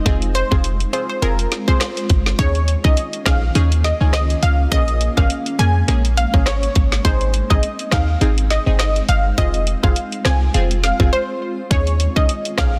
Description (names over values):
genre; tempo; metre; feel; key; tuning
dancehall; 103 BPM; 4/4; swing 56% on 16ths; unclear; A4 = 441 Hz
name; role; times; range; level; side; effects
granular cloud pad; sustained chords; 0.0-12.8 s; Eb3 to Ab4; -32 LUFS; equal; built-in reverb
punchy chord stab; accompaniment; 0.1-12.7 s; Bb3 to Ab4; -28 LUFS; equal; chorus
warm 808-style bass; bass; 0.1-12.8 s; F1 to F2; -20 LUFS; equal; none
island pop drum kit; drums; 0.1-12.7 s; hi-hat, kick drum, rim click, snare drum; -21 LUFS; equal; soft clipping on snare
analog pluck; melody; 0.3-12.7 s; Bb4 to Ab5; -25 LUFS; equal; chorus, tape echo
room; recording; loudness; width
digital ambience; dense, heavily limited modern master; -17 LUFS; mono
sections
0.0-2.4 A section; 2.4-12.8 B section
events
break 11.1-11.7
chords
0.1 Fm; 2.4 Eb7sus4; 4.7 Bbm7; 7.0 Ab; 9.4 Fm; 11.7 Eb7sus4